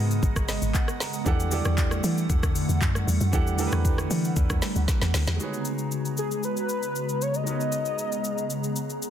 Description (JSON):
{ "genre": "amapiano", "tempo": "116 BPM", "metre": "4/4", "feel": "straight", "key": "unclear", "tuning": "A4 = 442 Hz", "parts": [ { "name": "clear grand piano", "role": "accompaniment", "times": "0.0-9.1 s", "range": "E3 to A#5", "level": "-34 LUFS", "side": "right 5 dB", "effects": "none" }, { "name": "hollow soft pad", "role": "sustained chords", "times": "0.0-9.1 s", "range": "C#3 to A#5", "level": "-30 LUFS", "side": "left 1 dB", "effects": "ensemble chorus, sidechain pumping" }, { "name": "deep log drum bass", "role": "bass", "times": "0.0-5.4 s", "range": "G#1 to E3", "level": "-25 LUFS", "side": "equal", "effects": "none" }, { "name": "afro-pop drum kit", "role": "drums", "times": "0.1-9.1 s", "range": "handclaps, hi-hat, kick drum, rim click, shaker, snare drum", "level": "-27 LUFS", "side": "equal", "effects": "none" }, { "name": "warm velvety synth lead", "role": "melody", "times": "6.2-8.9 s", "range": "G#4 to D#5", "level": "-29 LUFS", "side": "left 1 dB", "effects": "chorus, tape echo" } ], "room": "light reverb, digital ambience", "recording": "dense, heavily limited modern master", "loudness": "-23 LUFS", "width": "side -10 dB against mid", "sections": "0.0-5.4 A section; 5.4-9.1 B section", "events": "drop 0.0-5.4; grand piano fill 0.2-1.3; drum fill 4.9-5.4", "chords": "0.0 G#m11; 1.3 Em11; 5.4 G#m11" }